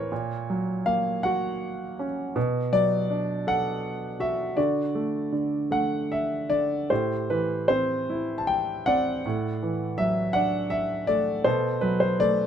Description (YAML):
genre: classical, lyrical solo piano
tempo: 50-56 BPM (dotted quarters)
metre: 6/8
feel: rubato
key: unclear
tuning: A4 = 440 Hz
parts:
  - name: warm concert grand piano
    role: solo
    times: 0.0-12.5 s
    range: A2 to A5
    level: -24 LUFS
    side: equal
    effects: none
room: light reverb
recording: close, detailed microphones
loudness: -24 LUFS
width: side -8 dB against mid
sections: 0.0-12.5 A section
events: none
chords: 0.1 F#/A#; 2.4 Bm7; 4.6 D; 6.9 Am7; 9.2 Dadd9/A; 11.4 Bm7